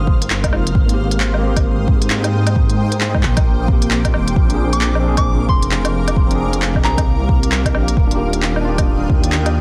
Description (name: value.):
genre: future garage.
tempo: 133 BPM.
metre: 4/4.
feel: swing 61% on 16ths.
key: unclear.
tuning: A4 = 440 Hz.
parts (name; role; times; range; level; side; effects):
granular cloud pad; sustained chords; 0.0-9.6 s; D4 to F6; -30 LUFS; equal; built-in reverb, sidechain pumping.
dark detuned saw bass; bass; 0.0-9.6 s; Eb1 to Ab2; -21 LUFS; equal; sidechain pumping.
wind-like tuned noise texture; texture; 0.0-9.6 s; Bb3 to Bb4; -34 LUFS; equal; none.
electronic kick drum; drums; 0.1-9.2 s; none; -18 LUFS; equal; none.
organic electronic drum kit; drums; 0.2-9.5 s; handclaps, hi-hat, woodblock; -24 LUFS; equal; none.
tine electric piano; accompaniment; 0.5-9.6 s; Ab3 to Ab4; -26 LUFS; equal; sidechain pumping, analog delay.
soft synth bell; melody; 4.7-7.5 s; Bb5 to D6; -28 LUFS; equal; chorus, vintage 12-bit sampler grit, analog delay.
room: light reverb, digital ambience.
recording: dense, heavily limited modern master, vinyl crackle.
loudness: -16 LUFS.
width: mono.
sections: 0.0-9.6 A section.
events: none.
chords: 0.0 Fm7; 0.8 Abmaj7; 4.4 Bb7; 8.0 Ebmaj9.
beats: 0.30 | 0.75 1.21 1.66 2.11 | 2.56 3.01 3.46 3.91 | 4.36 4.82 5.27 5.72 | 6.17 6.62 7.07 7.52 | 7.97 8.42 8.88 9.33.